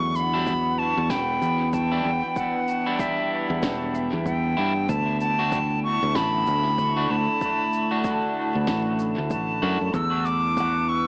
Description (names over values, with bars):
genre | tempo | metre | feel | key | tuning
ambient dub | 95 BPM | 4/4 | swing 59% on 16ths | E minor | A4 = 441 Hz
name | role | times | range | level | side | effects
bright reedy silver concert flute | melody | 0.0-11.1 s | E5 to E6 | -24 LUFS | equal | tape echo
warbly tape-like pad | sustained chords | 0.0-11.1 s | D3 to E4 | -30 LUFS | equal | chorus, built-in reverb
handpan | arpeggios | 0.0-2.3, 10.6-11.1 s | F#3 to F#5 | -39 LUFS | equal | none
fingered electric bass | bass | 0.0-11.0 s | E1 to G2 | -26 LUFS | equal | none
electronic shaker and snare drum | drums | 0.2-10.7 s | none | -35 LUFS | equal | overdrive, dub echo
electric guitar at the edge of break-up | stabs | 0.3-9.8 s | G3 to F#4 | -30 LUFS | equal | dub echo
electronic kick drum | drums | 0.5-10.7 s | none | -34 LUFS | equal | overdrive
room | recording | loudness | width
moderate echo chamber reverb, RT60 2.1 s | echo-heavy mix, vinyl crackle, AM radio sound | -21 LUFS | side -33 dB against mid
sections
0.0-11.1 A section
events
none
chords
0.0 Em7; 4.9 D; 9.9 E7(no3)